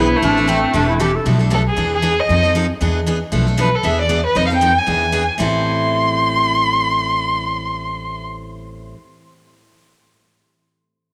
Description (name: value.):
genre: acoustic string swing (jazz manouche).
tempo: 233 BPM.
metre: 4/4.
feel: swing 57% on 8ths.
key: A minor.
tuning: A4 = 440 Hz.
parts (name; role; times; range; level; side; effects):
warm violin; melody; 0.0-8.2 s; A3 to C6; -20 LUFS; equal; none.
breathy clarinet; second line; 0.0-1.3 s; C4 to A4; -22 LUFS; equal; none.
picked steel-string acoustic guitar; accompaniment; 0.0-9.0 s; A2 to A4; -23 LUFS; equal; none.
upright bass; bass; 0.0-8.9 s; E1 to F2; -24 LUFS; equal; none.
room: moderate plate reverb, RT60 3.5 s.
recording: none.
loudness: -17 LUFS.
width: mono.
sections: 0.0-1.3 A section; 1.3-5.4 B section; 5.4-7.4 C section.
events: none.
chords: 0.2 Am7; 1.3 Bm7b5; 1.8 E7; 2.3 F7; 2.8 E7; 3.3 Bm7b5; 3.8 E7; 4.4 F7; 4.9 E7; 5.4 Am7.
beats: | 0.23 0.48 0.74 1.00 | 1.26 1.52 1.77 2.03 | 2.29 2.55 2.81 3.06 | 3.32 3.58 3.84 4.09 | 4.35 4.61 4.87 5.13 | 5.38 5.64 5.90 6.16 | 6.42 6.67 6.93 7.19.